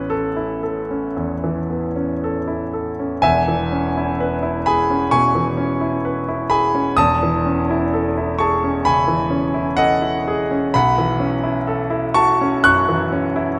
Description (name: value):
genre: classical, impressionist solo piano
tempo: 57-67 BPM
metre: 4/4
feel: rubato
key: A major, E major from 3.2 s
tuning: A4 = 441 Hz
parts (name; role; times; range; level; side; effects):
- clear concert grand piano; solo; 0.0-13.6 s; E1 to F#6; -19 LUFS; equal; none
room: moderate concert hall reverb, RT60 2.4 s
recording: none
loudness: -19 LUFS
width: mono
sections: 0.0-3.2 A section; 3.2-13.6 B section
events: none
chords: 0.0 Aadd9; 3.2 E6; 7.0 Amaj7/E; 10.7 B11